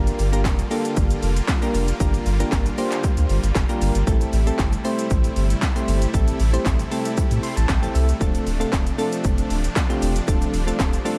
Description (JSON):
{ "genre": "dance-pop", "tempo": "116 BPM", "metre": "4/4", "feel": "straight", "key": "unclear", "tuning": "A4 = 440 Hz", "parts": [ { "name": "soft electric-piano-like synth keys", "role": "accompaniment", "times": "0.0-11.2 s", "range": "A3 to C6", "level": "-28 LUFS", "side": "equal", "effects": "chorus, sidechain pumping" }, { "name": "supersaw chords", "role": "sustained chords", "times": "0.0-11.2 s", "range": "C3 to F4", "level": "-32 LUFS", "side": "equal", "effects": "sidechain pumping" }, { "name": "warm sub bass", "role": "bass", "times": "0.0-11.0 s", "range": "D1 to A2", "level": "-23 LUFS", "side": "equal", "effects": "sidechain pumping" }, { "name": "house drum kit", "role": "drums", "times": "0.1-11.2 s", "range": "handclaps, hi-hat, kick drum, shaker, snare drum", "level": "-26 LUFS", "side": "equal", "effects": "overdrive" }, { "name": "tube shaker", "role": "percussion", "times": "0.1-11.2 s", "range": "none", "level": "-46 LUFS", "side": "equal", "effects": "none" } ], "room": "little or no reverb", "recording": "dark, warm production", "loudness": "-21 LUFS", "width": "mono", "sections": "0.0-11.2 A section", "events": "synth keys fill 7.2-8.2", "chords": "0.0 Gm7; 4.1 Am7; 8.2 Dm7" }